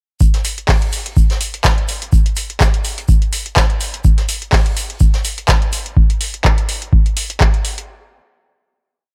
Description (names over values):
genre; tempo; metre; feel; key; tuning
house; 125 BPM; 4/4; swing 55% on 16ths; none; none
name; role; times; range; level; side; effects
electronic kick drum; drums; 0.2-7.5 s; none; -16 LUFS; equal; none
jazz brush drum kit; drums; 0.2-5.9 s; hi-hat, shaker, snare drum; -32 LUFS; equal; sidechain pumping on hats, high-pass filter on hats, high-pass filter on snare, sidechain pumping on perc, high-pass filter on perc, high-pass filter on room
booming analog drum machine; drums; 0.3-7.9 s; handclaps, hi-hat; -22 LUFS; equal; none
room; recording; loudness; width
small room ambience; none; -16 LUFS; mono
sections
0.2-7.9 groove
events
none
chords
none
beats
| 0.21 0.69 1.17 1.65 | 2.13 2.61 3.09 3.57 | 4.05 4.53 5.01 5.49 | 5.97 6.45 6.93 7.41